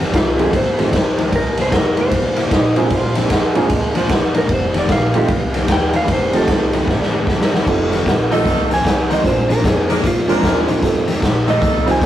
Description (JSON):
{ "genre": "electric blues shuffle", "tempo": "152 BPM", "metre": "4/4", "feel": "swing 64% on 8ths", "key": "F mixolydian", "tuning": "A4 = 439 Hz", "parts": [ { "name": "electric guitar at the edge of break-up", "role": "riff", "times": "0.0-12.1 s", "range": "F2 to E4", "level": "-24 LUFS", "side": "left 3 dB", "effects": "tremolo" }, { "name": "upright bass", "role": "bass", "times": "0.0-12.1 s", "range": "E1 to Bb2", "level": "-25 LUFS", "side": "equal", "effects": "none" }, { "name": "raw garage drum kit", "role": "drums", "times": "0.0-12.1 s", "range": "crash cymbal, hi-hat, kick drum, ride cymbal, snare drum", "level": "-16 LUFS", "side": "equal", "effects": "none" }, { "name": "clean lap steel guitar", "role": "melody", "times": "0.2-12.1 s", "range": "F4 to Ab5", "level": "-20 LUFS", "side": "equal", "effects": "none" }, { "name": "dark upright piano", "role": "accompaniment", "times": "0.4-12.1 s", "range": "G3 to C5", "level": "-20 LUFS", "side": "right 3 dB", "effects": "none" }, { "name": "breathy tenor saxophone", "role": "second line", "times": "2.5-4.2 s", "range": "F3 to F4", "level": "-21 LUFS", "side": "right 2 dB", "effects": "none" }, { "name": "warm horn section", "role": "stabs", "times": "8.3-11.9 s", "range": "A3 to C5", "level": "-23 LUFS", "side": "equal", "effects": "none" } ], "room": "light reverb", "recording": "rough rehearsal-room recording, warm saturation", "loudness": "-14 LUFS", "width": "side -12 dB against mid", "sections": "0.0-7.7 A section; 7.7-12.1 B section", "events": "drum fill 6.9-7.7; electric slide guitar solo 7.7-12.1", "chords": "0.0 F7; 1.3 C7; 2.9 Bb7; 4.5 F7; 9.2 Bb7; 10.8 F7" }